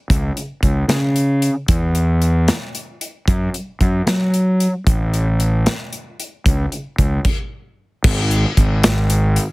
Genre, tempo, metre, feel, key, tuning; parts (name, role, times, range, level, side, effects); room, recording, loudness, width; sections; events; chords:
math rock and midwest emo; 76 BPM (dotted quarters); 6/8; straight; A4 = 440 Hz
fuzz fingered electric bass; bass; 0.1-9.4 s; G#1 to F#3; -16 LUFS; equal; overdrive
modern studio drum kit; drums; 0.1-9.5 s; crash cymbal, hi-hat, kick drum, snare drum; -18 LUFS; equal
little or no reverb; heavily compressed radio sound, multiband compression; -15 LUFS; side -23 dB against mid
0.0-8.0 A section; 8.0-9.5 B section
stop 7.2-8.0